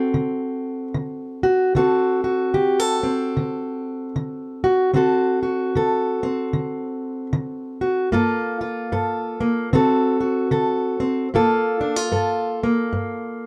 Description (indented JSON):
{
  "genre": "blues",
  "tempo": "75 BPM",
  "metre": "4/4",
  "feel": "swing 60% on 8ths",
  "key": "G minor",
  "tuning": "A4 = 440 Hz",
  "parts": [
    { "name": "fingerpicked plugged-in steel-string acoustic guitar", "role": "solo", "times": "0.0-13.5 s", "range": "G2 to A4", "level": "-22 LUFS", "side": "equal", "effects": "none" }
  ],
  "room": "moderate booth ambience, RT60 0.2 s",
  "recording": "dark, warm production",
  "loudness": "-22 LUFS",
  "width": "mono",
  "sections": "0.0-11.3 A section; 11.3-13.5 B section",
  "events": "none",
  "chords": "0.0 D7; 8.1 Gm9; 9.7 D7; 11.3 Gm9"
}